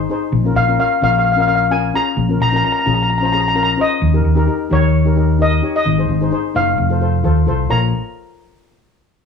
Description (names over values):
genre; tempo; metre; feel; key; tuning
calypso; 130 BPM; 4/4; straight; Bb minor; A4 = 440 Hz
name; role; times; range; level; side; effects
hollow-body short-scale fingered electric bass; bass; 0.0-7.9 s; F1 to Eb2; -16 LUFS; equal; none
steel pan; accompaniment; 0.1-7.9 s; Db4 to Db5; -21 LUFS; left 6 dB; none
steel pan; melody; 0.6-7.9 s; Db5 to Bb5; -17 LUFS; left 2 dB; cassette tape
room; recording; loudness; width
little or no reverb; home recording on cassette, studio ambience; -13 LUFS; side -6 dB against mid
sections
0.0-7.7 A section; 7.7-9.3 B section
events
none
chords
0.3 Bbm; 4.0 Eb; 5.9 Ab; 6.8 F; 7.7 Bbm